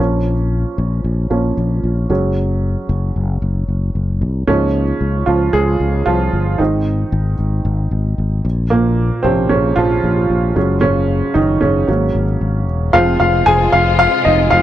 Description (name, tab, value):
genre	piano-driven pop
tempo	114 BPM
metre	4/4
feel	straight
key	unclear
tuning	A4 = 440 Hz
part	warm upright piano	accompaniment	0.0-14.6 s	Bb2 to Ab5	-15 LUFS	right 2 dB	none
part	fretless electric bass	bass	0.0-14.6 s	Fb1 to Db2	-17 LUFS	left 1 dB	none
part	warm studio string section	sustained chords	12.9-14.6 s	C3 to F4	-20 LUFS	left 7 dB	none
room	light reverb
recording	dry, close 1970s-style studio recording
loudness	-13 LUFS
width	side -12 dB against mid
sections	0.0-12.9 A section; 12.9-14.6 B section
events	upright piano solo 0.0-12.9, 12.9-14.6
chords	0.0 Bbm; 2.1 Gbsus2; 4.5 Db6; 6.6 Ab; 8.4 Bbm; 10.6 Gbsus2; 11.9 Ab7sus4; 12.9 Fm